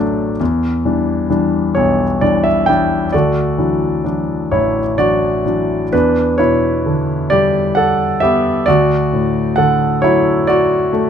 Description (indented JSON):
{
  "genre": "classical, lyrical solo piano",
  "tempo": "44 BPM (dotted quarters)",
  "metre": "6/8",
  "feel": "rubato",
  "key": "unclear",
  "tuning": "A4 = 440 Hz",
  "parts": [
    { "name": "warm concert grand piano", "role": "solo", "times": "0.0-11.1 s", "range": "A1 to G5", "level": "-13 LUFS", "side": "equal", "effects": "none" }
  ],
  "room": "light reverb",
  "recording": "close, detailed microphones",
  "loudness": "-13 LUFS",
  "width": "side -8 dB against mid",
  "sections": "0.0-5.9 A section; 5.9-11.1 B section",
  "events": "none",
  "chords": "0.4 Em7; 3.1 Dadd9; 5.9 Em7; 8.7 Dadd9",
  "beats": "| 0.40 1.77 | 3.13 4.52 | 5.92 7.31 | 8.67 10.03"
}